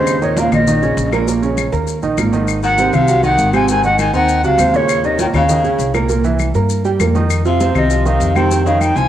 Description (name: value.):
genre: Afro-Cuban jazz.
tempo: 199 BPM.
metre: 4/4.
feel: straight.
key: unclear.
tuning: A4 = 436 Hz.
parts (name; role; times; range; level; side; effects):
concert flute; melody; 0.0-9.1 s; C5 to Ab5; -16 LUFS; equal; cassette tape, tape echo.
warm baritone saxophone; second line; 0.0-9.1 s; G2 to F3; -22 LUFS; left 7 dB; cassette tape.
clear upright piano; accompaniment; 0.0-9.1 s; Bb2 to C6; -18 LUFS; right 5 dB; cassette tape.
upright bass; bass; 0.0-9.1 s; Ab1 to G2; -18 LUFS; left 1 dB; none.
claves; percussion; 0.1-9.0 s; none; -27 LUFS; left 10 dB; none.
congas; percussion; 0.1-9.0 s; none; -24 LUFS; left 1 dB; none.
maracas; percussion; 0.1-9.1 s; none; -30 LUFS; left 12 dB; none.
room: moderate spring reverb, RT60 2.4 s.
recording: home recording on cassette.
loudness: -12 LUFS.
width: side -11 dB against mid.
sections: 0.0-9.1 A section.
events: none.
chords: 0.1 Eb5; 1.3 Bbm; 1.9 Eb5; 2.5 Ab7; 4.9 Ebsus2; 6.1 C7; 7.3 F5.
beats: | 0.07 0.37 0.68 0.98 | 1.28 1.58 1.88 2.18 | 2.48 2.79 3.09 3.39 | 3.69 3.99 4.29 4.59 | 4.89 5.20 5.50 5.80 | 6.10 6.40 6.70 7.00 | 7.30 7.61 7.91 8.21 | 8.51 8.81.